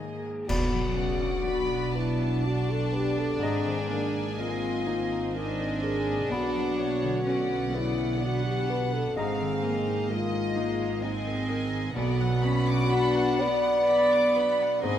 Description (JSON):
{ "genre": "cinematic, emotional film score for orchestra", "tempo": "63 BPM", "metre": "3/4", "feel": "rubato", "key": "unclear", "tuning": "A4 = 440 Hz", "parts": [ { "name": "warm studio violin section", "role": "second line", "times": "0.0-15.0 s", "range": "G#4 to D6", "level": "-37 LUFS", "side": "right 1 dB", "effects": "none" }, { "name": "dark studio viola section", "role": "accompaniment", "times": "0.0-15.0 s", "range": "C#3 to D#4", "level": "-37 LUFS", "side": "right 1 dB", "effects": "none" }, { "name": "warm grand piano", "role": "accompaniment", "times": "0.0-15.0 s", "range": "B1 to D#5", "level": "-37 LUFS", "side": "left 2 dB", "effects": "none" }, { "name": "mellow French horn section", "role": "sustained chords", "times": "0.0-15.0 s", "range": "D#4 to D5", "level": "-28 LUFS", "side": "left 1 dB", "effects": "none" }, { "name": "concert harp", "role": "arpeggios", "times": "0.0-15.0 s", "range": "G#2 to A#5", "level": "-38 LUFS", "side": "left 8 dB", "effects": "none" }, { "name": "warm studio cello section", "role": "bass", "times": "0.0-15.0 s", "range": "G#2 to D4", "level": "-33 LUFS", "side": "right 2 dB", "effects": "none" }, { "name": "dark studio violin section", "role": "melody", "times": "0.5-15.0 s", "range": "D#5 to B5", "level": "-39 LUFS", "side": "left 4 dB", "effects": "none" }, { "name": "mellow clarinet", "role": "second line", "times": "0.5-15.0 s", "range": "D5 to D#5", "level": "-40 LUFS", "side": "left 1 dB", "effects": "none" }, { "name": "mellow hollow concert flute", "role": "second line", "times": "0.5-15.0 s", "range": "A#5 to B5", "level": "-37 LUFS", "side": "equal", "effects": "none" }, { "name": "warm studio double bass section", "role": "bass", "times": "0.5-15.0 s", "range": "G#1 to B1", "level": "-32 LUFS", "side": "right 3 dB", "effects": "none" }, { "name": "clash cymbals and concert bass drum", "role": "percussion", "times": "0.5-2.4 s", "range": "none", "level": "-35 LUFS", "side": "right 1 dB", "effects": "none" } ], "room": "moderate concert hall reverb, RT60 2.5 s", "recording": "none", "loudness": "-24 LUFS", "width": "side -10 dB against mid", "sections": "0.5-15.0 A section", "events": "band accent 0.5-1.5", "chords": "0.5 Bm; 3.4 G#sus2; 6.3 Bm; 9.2 G#sus2; 12.0 Bm" }